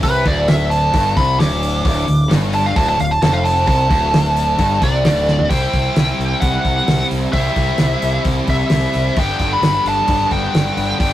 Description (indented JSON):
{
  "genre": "classic rock",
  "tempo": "131 BPM",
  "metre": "4/4",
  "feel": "straight",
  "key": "unclear",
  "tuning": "A4 = 440 Hz",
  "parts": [
    { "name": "biting lead guitar", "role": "melody", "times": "0.0-11.1 s", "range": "B4 to D6", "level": "-18 LUFS", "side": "equal", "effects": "overdrive" },
    { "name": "tight distorted guitar", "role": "riff", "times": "0.0-11.1 s", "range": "D2 to C5", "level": "-20 LUFS", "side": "equal", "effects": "distortion" },
    { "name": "growling fingered electric bass", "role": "bass", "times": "0.0-11.1 s", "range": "D1 to C2", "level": "-21 LUFS", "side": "equal", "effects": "overdrive" },
    { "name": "damped 70s drum kit", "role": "drums", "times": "0.0-11.1 s", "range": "hi-hat, kick drum, snare drum, toms", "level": "-18 LUFS", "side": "equal", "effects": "none" }
  ],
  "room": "light reverb",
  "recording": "rough rehearsal-room recording",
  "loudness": "-14 LUFS",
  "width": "side -13 dB against mid",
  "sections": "0.0-5.5 A section; 5.5-11.1 B section",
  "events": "lead electric guitar solo 0.0-5.5; drum fill 5.3",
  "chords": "0.0 D5; 5.5 C; 9.2 G"
}